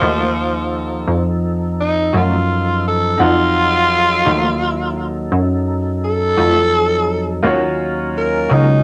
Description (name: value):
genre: slow blues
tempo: 57 BPM (dotted quarters)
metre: 12/8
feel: straight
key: unclear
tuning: A4 = 438 Hz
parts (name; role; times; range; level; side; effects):
- growling tenor saxophone; second line; 0.0-8.8 s; F3 to Bb4; -19 LUFS; equal; none
- bright upright piano; accompaniment; 0.0-8.8 s; Eb4 to Gb5; -25 LUFS; equal; none
- clean electric guitar; accompaniment; 0.0-8.7 s; Eb3 to Gb4; -24 LUFS; equal; tremolo
- tonewheel organ; sustained chords; 0.0-8.8 s; F3 to Bb4; -27 LUFS; equal; slow rotary speaker, overdrive, chorus vibrato
- plucky analog bass; bass; 0.0-8.8 s; Db2 to Gb2; -20 LUFS; equal; none
room: moderate studio reverb, RT60 0.5 s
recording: none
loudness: -16 LUFS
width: mono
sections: 0.0-8.8 A section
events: tenor saxophone solo 0.0-8.8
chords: 0.0 F7b9; 7.4 Ebm7